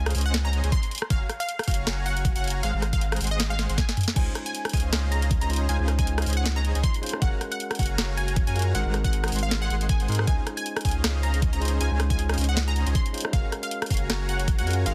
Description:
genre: future bass.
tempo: 157 BPM.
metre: 4/4.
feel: swing 56% on 16ths, half-time.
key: Db major.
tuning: A4 = 440 Hz.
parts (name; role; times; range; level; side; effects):
unison pluck; melody; 0.0-14.9 s; Eb5 to C6; -35 LUFS; equal; phaser, sidechain pumping, tape echo.
dense compressed supersaw; riff; 0.0-14.9 s; Ab3 to C6; -37 LUFS; equal; cassette tape, sidechain pumping.
saturated sub bass; bass; 0.0-14.9 s; Gb1 to Ab2; -28 LUFS; equal; sidechain pumping.
trap drum kit; drums; 0.1-14.9 s; crash cymbal, hi-hat, rim click, snare drum, toms; -32 LUFS; equal; soft clipping on snare.
electronic kick drum; drums; 0.7-14.6 s; none; -27 LUFS; equal; overdrive.
tine electric piano; accompaniment; 4.1-14.9 s; Ab3 to F5; -38 LUFS; equal; sidechain pumping.
room: little or no reverb.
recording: dense, heavily limited modern master.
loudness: -25 LUFS.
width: mono.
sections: 0.0-14.9 A section.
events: drum fill 3.6-4.2.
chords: 0.0 Dbmaj9; 1.1 Gbmaj9; 2.6 Ab9; 4.2 Dbmaj9; 7.2 Gbmaj9; 8.7 Ab9; 10.3 Dbmaj9; 13.3 Gbmaj9.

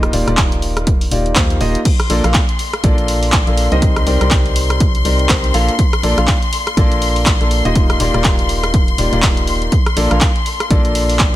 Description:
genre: piano house.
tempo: 122 BPM.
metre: 4/4.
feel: swing 58% on 16ths.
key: Bb major.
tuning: A4 = 440 Hz.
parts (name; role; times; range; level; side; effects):
warm concert grand piano; riff; 0.0-11.3 s; Bb3 to F5; -19 LUFS; left 1 dB; sidechain pumping, dub echo.
organ-like FM bass; bass; 0.0-11.3 s; Eb1 to Eb2; -18 LUFS; equal; sidechain pumping.
punchy analog drum machine; drums; 0.0-11.3 s; crash cymbal, handclaps, hi-hat, rim click; -20 LUFS; equal; none.
electronic kick drum; drums; 0.4-11.3 s; none; -15 LUFS; equal; none.
clear studio string section; sustained chords; 1.9-11.4 s; C6; -22 LUFS; left 5 dB; sidechain pumping.
room: little or no reverb.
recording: none.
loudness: -12 LUFS.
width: side -14 dB against mid.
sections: 0.0-11.4 A section.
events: none.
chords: 0.0 Ebmaj9; 1.9 Bbmaj7; 3.8 Cm9; 5.5 Bbmaj7; 7.8 Ebmaj9; 9.7 Bbmaj7.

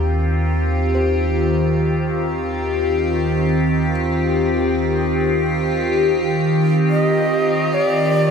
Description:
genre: ambient.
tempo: free time.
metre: none.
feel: none.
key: Eb major.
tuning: A4 = 442 Hz.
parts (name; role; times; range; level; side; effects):
evolving wavetable pad; sustained chords; 0.0-8.3 s; Eb3 to G4; -17 LUFS; left 1 dB; phaser, built-in reverb, shimmer reverb.
felt-muted upright piano; arpeggios; 0.0-8.3 s; C5; -36 LUFS; right 2 dB; none.
deep rumbling drone; bass; 0.0-8.3 s; Eb2; -24 LUFS; equal; built-in reverb, tube saturation.
organ-like drone; drone; 0.2-8.3 s; Eb3; -30 LUFS; right 1 dB; none.
breathy bright long shakuhachi; melody; 6.9-8.3 s; D5 to Eb5; -19 LUFS; right 1 dB; shimmer reverb.
room: wet huge ambient reverb, RT60 7.7 s.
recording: none.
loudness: -16 LUFS.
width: side -6 dB against mid.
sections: 0.0-8.3 A section.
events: none.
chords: 0.0 Eb69.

